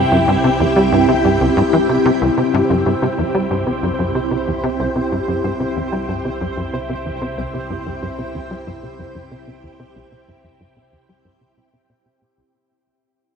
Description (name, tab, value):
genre	ambient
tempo	93 BPM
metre	4/4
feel	straight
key	C major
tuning	A4 = 441 Hz
part	phased string machine	sustained chords	0.0-12.5 s	C3 to G5	-18 LUFS	equal	ensemble chorus, phaser, shimmer reverb
part	tight sequencer bass	riff	0.0-12.4 s	C2 to G3	-19 LUFS	equal	wide subtle chorus, ping-pong delay, shimmer reverb
part	analog drone	bass	0.0-12.5 s	C2	-32 LUFS	equal	chorus
part	pulsing gated texture	texture	2.7-12.6 s	C5	-29 LUFS	right 2 dB	chorus, built-in reverb, shimmer reverb
room	wet huge ambient reverb, RT60 7.4 s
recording	none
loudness	-15 LUFS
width	side -6 dB against mid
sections	0.0-2.2 A section; 2.2-12.5 B section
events	fade-out on synth drone 2.2-12.5; fade-out 2.2-12.5; filter sweep on analog synth bass 2.2-12.5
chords	0.0 C